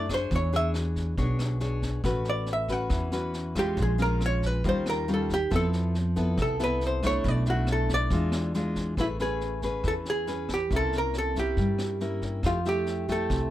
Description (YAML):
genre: bossa nova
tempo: 138 BPM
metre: 4/4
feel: straight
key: unclear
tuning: A4 = 440 Hz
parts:
  - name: archtop guitar, miked and amplified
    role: melody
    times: 0.0-13.5 s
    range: E4 to F#5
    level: -29 LUFS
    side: right 1 dB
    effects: none
  - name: nylon-string guitar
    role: accompaniment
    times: 0.0-13.5 s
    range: Bb2 to C#5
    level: -31 LUFS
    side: left 2 dB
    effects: none
  - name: upright bass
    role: bass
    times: 0.0-13.5 s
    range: A1 to G2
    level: -29 LUFS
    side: equal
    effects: none
  - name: vintage brush drum kit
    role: drums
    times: 0.1-13.4 s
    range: kick drum, rim click, snare drum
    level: -34 LUFS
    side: equal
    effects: none
room: little or no reverb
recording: none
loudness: -25 LUFS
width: side -13 dB against mid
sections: 0.0-9.0 A section; 9.0-13.5 B section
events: hollow-body jazz guitar solo 0.0-9.0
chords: 0.3 E6; 2.0 A69; 3.8 Bbm7; 4.6 D#9; 5.5 Fmaj7#11; 7.2 Bm7; 8.1 E7b9; 9.0 Amaj9; 10.7 C7b9; 12.4 Fmaj9